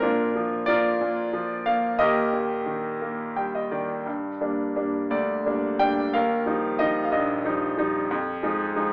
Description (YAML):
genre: classical, lyrical solo piano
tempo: 59 BPM (dotted quarters)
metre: 6/8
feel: uneven beats, rubato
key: Eb major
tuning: A4 = 439 Hz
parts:
  - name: bright concert grand piano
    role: solo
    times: 0.0-8.9 s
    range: Bb1 to G5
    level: -22 LUFS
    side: equal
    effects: none
room: moderate scoring stage reverb, RT60 1.7 s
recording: AM radio sound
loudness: -22 LUFS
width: side -37 dB against mid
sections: 0.0-4.1 A section; 4.1-8.9 B section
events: grand piano fill 3.0-4.1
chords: 0.0 Bb; 2.0 Eb; 4.1 Gm; 6.1 Ebadd9; 8.1 Fm7